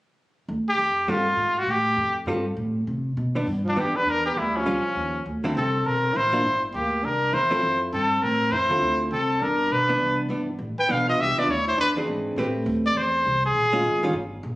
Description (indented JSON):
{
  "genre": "jazz, small-group swing and bop",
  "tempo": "202 BPM",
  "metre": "4/4",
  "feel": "swing 62% on 8ths",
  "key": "C major",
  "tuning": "A4 = 445 Hz",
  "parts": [
    { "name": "upright bass", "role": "bass", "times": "0.5-14.6 s", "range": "G1 to C3", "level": "-29 LUFS", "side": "equal", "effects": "none" },
    { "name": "brilliant trumpet", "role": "melody", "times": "0.7-14.1 s", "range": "Db4 to G5", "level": "-22 LUFS", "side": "equal", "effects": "none" },
    { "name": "archtop guitar, miked and amplified", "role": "accompaniment", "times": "1.1-14.1 s", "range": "D3 to B4", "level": "-28 LUFS", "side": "equal", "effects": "none" },
    { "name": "mellow tenor saxophone", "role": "second line", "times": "3.6-12.0 s", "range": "F3 to B4", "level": "-30 LUFS", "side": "equal", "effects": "none" }
  ],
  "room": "moderate large studio reverb, RT60 1.4 s",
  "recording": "recorded on a phone in the room, studio ambience, compression",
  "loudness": "-21 LUFS",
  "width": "side -17 dB against mid",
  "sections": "0.5-2.9 A section; 2.9-12.4 B section; 12.4-14.6 C section",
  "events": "none",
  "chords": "0.5 Dm; 1.1 G9sus4; 1.7 Fadd9; 2.3 G9sus4; 2.9 Cmaj9; 4.1 Dsus2; 4.7 Dbadd9; 5.2 Dm9; 6.4 Gm; 7.0 C9; 7.6 Fmaj7; 8.8 Dm7; 9.4 G; 10.0 Cmaj9; 11.8 E7b13; 12.4 Am9; 13.6 Bbm7",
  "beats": "| 0.49 0.79 1.09 1.38 | 1.68 1.98 2.28 2.57 | 2.87 3.17 3.47 3.76 | 4.06 4.36 4.66 4.95 | 5.25 5.55 5.84 6.14 | 6.44 6.74 7.03 7.33 | 7.63 7.92 8.22 8.52 | 8.81 9.11 9.41 9.71 | 10.00 10.30 10.60 10.89 | 11.19 11.48 11.78 12.08 | 12.38 12.67 12.97 13.26 | 13.56 13.86 14.15 14.45"
}